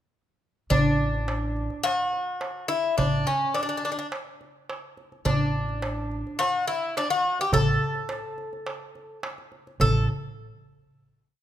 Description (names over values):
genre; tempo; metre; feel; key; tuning
Turkish makam ensemble; 106 BPM; 4/4; straight; A makam hicaz; A4 = 440 Hz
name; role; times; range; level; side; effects
Greek bouzouki; melody; 0.7-10.1 s; C#4 to A4; -26 LUFS; left 1 dB; none
upright bass; bass; 0.7-10.1 s; A1; -27 LUFS; right 1 dB; none
darbuka; percussion; 0.7-10.1 s; none; -28 LUFS; right 1 dB; none
room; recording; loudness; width
moderate recital hall reverb, RT60 1.5 s; minimal, uncompressed stereo recording; -23 LUFS; side -11 dB against mid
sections
0.7-9.8 A section; 9.8-11.4 final note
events
none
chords
none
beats
| 0.70 1.27 1.84 2.41 | 2.98 3.54 4.11 4.68 | 5.25 5.82 6.38 6.95 | 7.52 8.09 8.66 9.23 | 9.79